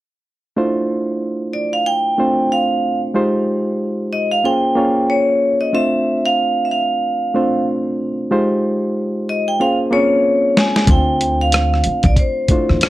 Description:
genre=R&B, neo-soul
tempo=93 BPM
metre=4/4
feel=swing 58% on 16ths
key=unclear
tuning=A4 = 444 Hz
part: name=reed electric piano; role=accompaniment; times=0.6-12.9 s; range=Ab3 to Db5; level=-18 LUFS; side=equal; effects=none
part: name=vibraphone with hard mallets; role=melody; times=1.5-12.8 s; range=C5 to Ab5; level=-17 LUFS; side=equal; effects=none
part: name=dusty soul sampler-style drum kit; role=drums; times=10.6-12.9 s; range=hi-hat, kick drum, rim click, snare drum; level=-15 LUFS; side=equal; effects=none
part: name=upright bass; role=bass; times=10.9-12.8 s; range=C2 to E2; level=-17 LUFS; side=equal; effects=none
room=moderate studio reverb, RT60 0.6 s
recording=none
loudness=-14 LUFS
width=side -16 dB against mid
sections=0.6-12.9 A section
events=drum fill 9.6-10.9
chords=0.6 Dm9; 3.1 Fm9; 4.4 Bbm9; 5.7 Dm7; 8.3 Fm9; 9.6 Bbm9; 10.9 Dm9

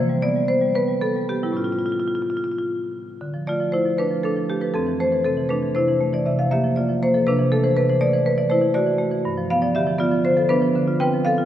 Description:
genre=classical, contemporary piece for solo marimba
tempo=106-124 BPM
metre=3/4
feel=rubato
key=D dorian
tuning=A4 = 440 Hz
part: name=marimba with medium hard mallets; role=solo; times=0.0-11.5 s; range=F2 to G5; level=-18 LUFS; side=equal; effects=none
room=wet church reverb, RT60 3.2 s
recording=none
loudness=-18 LUFS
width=side -11 dB against mid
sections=0.0-3.2 A section; 3.2-11.5 A section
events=none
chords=0.0 Em; 1.6 Aaug7; 3.2 Dmadd9; 4.7 Fmaj7; 6.3 C7sus4; 7.3 Cmaj13; 7.8 E9sus4/C; 9.2 G7; 10.7 Dm7

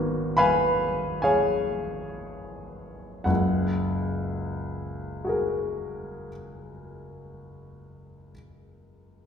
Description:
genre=classical, impressionist solo piano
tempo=28-38 BPM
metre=3/4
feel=rubato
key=F# major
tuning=A4 = 440 Hz
part: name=clear baby grand piano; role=solo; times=0.0-9.3 s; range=F#1 to C#6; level=-25 LUFS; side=left 1 dB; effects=none
room=wet recital hall reverb, RT60 1.5 s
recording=heard from further back in the room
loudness=-24 LUFS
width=side -7 dB against mid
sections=0.0-3.3 A section; 3.3-9.2 B section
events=slowing down 0.0-3.3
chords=0.0 G#m11; 3.3 F#add9

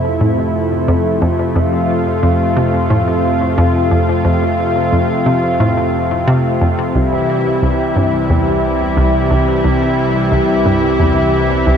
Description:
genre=ambient, sequencer-driven space music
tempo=89 BPM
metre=4/4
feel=straight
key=F major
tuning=A4 = 436 Hz
part: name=lush unison pad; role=sustained chords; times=0.0-11.8 s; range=C3 to F4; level=-14 LUFS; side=equal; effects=chorus
part: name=hollow square pluck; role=riff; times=0.0-11.8 s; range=C2 to C3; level=-17 LUFS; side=equal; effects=chorus, ping-pong delay
part: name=analog drone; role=bass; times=0.0-11.8 s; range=C2 to F2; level=-22 LUFS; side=equal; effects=chorus
room=moderate plate reverb, RT60 2.7 s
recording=none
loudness=-12 LUFS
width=side -8 dB against mid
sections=0.0-11.8 A section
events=none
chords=0.0 Fmaj7; 7.0 C

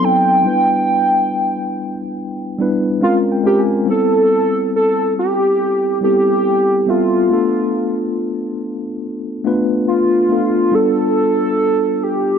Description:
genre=R&B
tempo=70 BPM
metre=4/4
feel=swing 62% on 16ths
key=A minor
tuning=A4 = 441 Hz
part: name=hollow square lead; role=melody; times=0.0-12.4 s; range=F4 to G5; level=-15 LUFS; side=right 1 dB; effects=chorus, slapback echo
part: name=mellow tine electric piano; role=accompaniment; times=0.0-12.4 s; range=F#3 to Ab5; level=-18 LUFS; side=left 2 dB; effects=medium stereo tremolo
room=light reverb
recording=dark, warm production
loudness=-14 LUFS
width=side -7 dB against mid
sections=0.0-3.9 A section; 3.9-12.4 A section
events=tine electric piano fill 2.6-3.9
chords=0.4 Em7; 3.0 Bbm7; 3.9 Am7; 7.3 Bm7b5; 10.7 G9

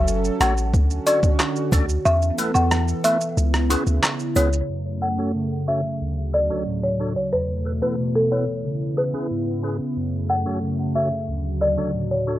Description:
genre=dancehall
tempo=91 BPM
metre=4/4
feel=straight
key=F# minor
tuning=A4 = 445 Hz
part: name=warm analog pad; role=sustained chords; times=0.0-12.4 s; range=D2 to A4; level=-26 LUFS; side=right 1 dB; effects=chorus, sidechain pumping
part: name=warm 808-style bass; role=bass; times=0.0-4.6 s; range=F#1 to E2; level=-21 LUFS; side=equal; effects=none
part: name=boom bap sampler-style drum kit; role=drums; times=0.1-4.7 s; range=handclaps, hi-hat, kick drum, rim click, shaker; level=-22 LUFS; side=equal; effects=none
part: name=folk marimba with medium mallets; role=melody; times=0.4-12.2 s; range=A4 to F#5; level=-24 LUFS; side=left 1 dB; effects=tape echo
part: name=percussive tonewheel organ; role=accompaniment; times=0.4-12.4 s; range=D2 to D5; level=-26 LUFS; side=equal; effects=fast rotary speaker
part: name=cabasa and woodblock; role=percussion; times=0.4-4.5 s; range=none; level=-31 LUFS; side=right 4 dB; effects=none
room=digital ambience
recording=dry, gritty hardware recording, transformer saturation, low-pass filter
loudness=-19 LUFS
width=side -14 dB against mid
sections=0.0-4.7 A section; 4.7-12.4 B section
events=kick muted 2.1-4.7; filter sweep 4.7-12.4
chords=0.0 F#m; 0.7 Dmaj7; 2.1 Esus4; 3.4 C#m7; 4.7 F#m; 6.0 Dmaj7; 7.3 Esus4; 8.6 C#m7; 10.0 F#m; 11.3 Dmaj7

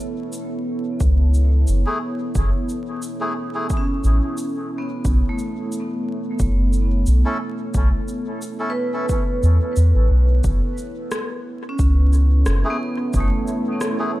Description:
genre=ambient dub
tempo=89 BPM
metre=4/4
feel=swing 54% on 16ths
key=F# minor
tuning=A4 = 440 Hz
part: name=deep dark ambient pad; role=sustained chords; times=0.0-14.2 s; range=B3 to C#5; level=-28 LUFS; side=right 1 dB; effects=chorus, built-in reverb
part: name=electronic shaker and rim click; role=drums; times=0.3-14.0 s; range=none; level=-31 LUFS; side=left 1 dB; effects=overdrive, dub echo
part: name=soft dub sub bass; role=bass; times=1.0-13.3 s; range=F#1 to E2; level=-15 LUFS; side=equal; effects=tube saturation
part: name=electronic kick drum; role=drums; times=1.0-13.3 s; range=none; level=-23 LUFS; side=equal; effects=overdrive
part: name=melodica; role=stabs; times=1.9-14.1 s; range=A3 to A4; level=-29 LUFS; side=left 1 dB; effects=dub echo
part: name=vibraphone with medium hard mallets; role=arpeggios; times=3.8-14.2 s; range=A3 to B4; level=-27 LUFS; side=right 1 dB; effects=dub echo
room=light reverb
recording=vinyl crackle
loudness=-18 LUFS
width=side -16 dB against mid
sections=0.0-14.2 A section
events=none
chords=0.0 F#m7 (rootless); 5.0 B9sus4; 10.4 F#m7

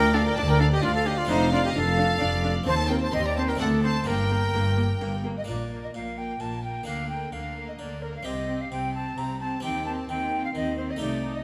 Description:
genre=classical, baroque-style concerto movement with solo episodes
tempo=130 BPM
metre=3/4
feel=straight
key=G minor, Bb major from 5.5 s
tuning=A4 = 440 Hz
part: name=rich chamber violin section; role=melody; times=0.0-11.4 s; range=Bb4 to C6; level=-36 LUFS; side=equal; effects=none
part: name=silver concert flute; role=melody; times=0.0-11.4 s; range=Eb4 to Bb5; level=-31 LUFS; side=equal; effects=none
part: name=warm chamber violin section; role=second line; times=0.0-11.4 s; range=G4 to F5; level=-38 LUFS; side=equal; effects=none
part: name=harpsichord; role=accompaniment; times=0.0-11.4 s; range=D2 to G4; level=-37 LUFS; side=equal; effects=none
part: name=rich chamber double bass section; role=bass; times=0.0-11.4 s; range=F1 to Eb2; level=-33 LUFS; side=equal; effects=none
part: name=rich studio cello section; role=bass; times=0.0-11.4 s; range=D2 to Eb3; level=-33 LUFS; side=equal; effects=none
part: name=rich studio viola section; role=accompaniment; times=0.1-11.4 s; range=Bb3 to Eb4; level=-36 LUFS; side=equal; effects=none
room=wet recital hall reverb, RT60 1.6 s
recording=none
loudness=-26 LUFS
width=mono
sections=0.0-5.5 A section; 5.5-11.4 B section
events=none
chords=0.0 Dm; 1.3 Dm/F; 2.7 Cm/Eb; 3.6 D7(no3); 4.1 Gm; 5.5 Bb; 6.9 Bb/D; 8.3 C5; 9.6 Cm/Eb

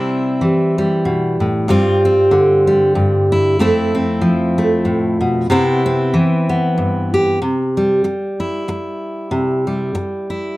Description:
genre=folk, solo fingerstyle acoustic guitar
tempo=94 BPM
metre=3/4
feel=swing 55% on 8ths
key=C major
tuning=A4 = 440 Hz
part: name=fingerpicked steel-string acoustic guitar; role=solo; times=0.0-10.6 s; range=F2 to G4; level=-14 LUFS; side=equal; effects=none
room=moderate large studio reverb, RT60 0.7 s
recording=dark, warm production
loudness=-14 LUFS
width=side -18 dB against mid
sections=0.0-7.4 A section; 7.4-10.6 B section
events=none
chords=0.0 C; 1.7 G7sus4; 3.6 Fmaj7; 5.5 Cmaj7; 7.4 C

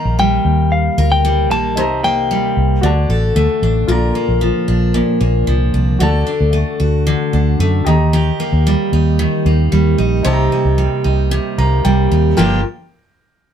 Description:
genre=acoustic pop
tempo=113 BPM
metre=4/4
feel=straight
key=unclear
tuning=A4 = 440 Hz
part: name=clean electric guitar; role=melody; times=0.0-2.8 s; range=F5 to Bb5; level=-17 LUFS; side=left 4 dB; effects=none
part: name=clear baby grand piano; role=accompaniment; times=0.0-12.6 s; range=Eb4 to Bb5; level=-24 LUFS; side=left 2 dB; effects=none
part: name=picked steel-string acoustic guitar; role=accompaniment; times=0.0-12.6 s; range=G2 to Bb4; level=-16 LUFS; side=right 1 dB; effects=none
part: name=vintage muted fingered electric bass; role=bass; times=0.1-12.6 s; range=G1 to F#2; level=-15 LUFS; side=equal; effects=none
room=light reverb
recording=none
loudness=-12 LUFS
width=side -9 dB against mid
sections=0.0-3.9 A section; 3.9-12.4 B section; 12.4-13.5 C section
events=grand piano fill 11.3-12.4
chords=0.0 Eb; 1.8 Cm7; 2.8 D; 3.9 Bb; 6.0 D; 7.9 Eb; 10.3 Cm7; 12.4 Gm7

